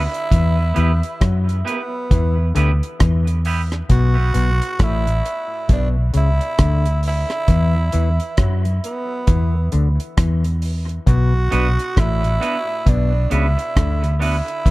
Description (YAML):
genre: dub reggae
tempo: 67 BPM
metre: 4/4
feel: swing 59% on 16ths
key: B minor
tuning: A4 = 440 Hz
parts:
  - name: growling tenor saxophone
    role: melody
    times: 0.0-14.7 s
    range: B3 to F#4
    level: -25 LUFS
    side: right 2 dB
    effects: dub echo
  - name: vintage muted fingered electric bass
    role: bass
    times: 0.0-14.7 s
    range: A1 to F#2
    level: -17 LUFS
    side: equal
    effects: none
  - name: deep reggae drum kit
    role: drums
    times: 0.1-14.7 s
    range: hi-hat, kick drum, rim click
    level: -19 LUFS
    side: equal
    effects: none
  - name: overdriven clav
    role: riff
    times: 0.3-14.7 s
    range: A2 to F#3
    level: -26 LUFS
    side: left 4 dB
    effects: dub echo
  - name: clean electric guitar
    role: accompaniment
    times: 0.7-3.6, 11.5-14.4 s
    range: B3 to B4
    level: -28 LUFS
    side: right 4 dB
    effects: high-pass filter, dub echo
room: small room ambience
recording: dark, warm production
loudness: -16 LUFS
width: side -19 dB against mid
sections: 0.0-14.7 A section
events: filter sweep on clean electric guitar 0.3-7.5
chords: 0.3 Em; 3.9 Bm; 7.5 E5; 11.1 Bm